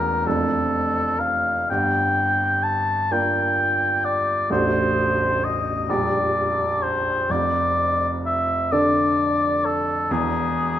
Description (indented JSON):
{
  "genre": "classical, romantic duo for oboe and grand piano",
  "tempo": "43 BPM (dotted quarters)",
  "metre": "6/8",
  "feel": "rubato",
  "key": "unclear",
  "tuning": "A4 = 440 Hz",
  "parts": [
    { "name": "warm oboe", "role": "melody", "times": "0.0-10.8 s", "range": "G#4 to A5", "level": "-21 LUFS", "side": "left 1 dB", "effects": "none" },
    { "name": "clear baby grand piano", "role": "accompaniment", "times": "0.0-10.8 s", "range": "A0 to A4", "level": "-24 LUFS", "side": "right 1 dB", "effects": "none" }
  ],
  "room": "wet recital hall reverb, RT60 1.4 s",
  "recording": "none",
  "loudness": "-19 LUFS",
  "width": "side -11 dB against mid",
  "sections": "0.0-10.8 A section",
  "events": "none",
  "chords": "0.3 Dm/F; 1.7 Gm7; 4.5 D7/A; 5.9 Gm/Bb; 7.3 Dm/F; 10.1 E"
}